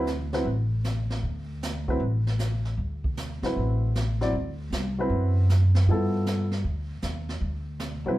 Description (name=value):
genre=jazz, small-group swing and bop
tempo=155 BPM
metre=4/4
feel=swing 66% on 8ths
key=D mixolydian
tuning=A4 = 441 Hz
part: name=warm upright piano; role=accompaniment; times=0.0-8.2 s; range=F3 to D5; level=-28 LUFS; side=equal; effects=none
part: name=upright bass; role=bass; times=0.0-8.2 s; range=A1 to G2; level=-25 LUFS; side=equal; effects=none
part: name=jazz brush drum kit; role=drums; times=0.1-8.2 s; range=brushed snare drum, hi-hat, kick drum, snare drum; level=-34 LUFS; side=right 2 dB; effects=none
room=moderate studio reverb, RT60 0.8 s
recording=band playing live in one room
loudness=-24 LUFS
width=side -16 dB against mid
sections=0.0-8.2 A section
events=none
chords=0.0 D13; 5.9 G13; 7.4 D13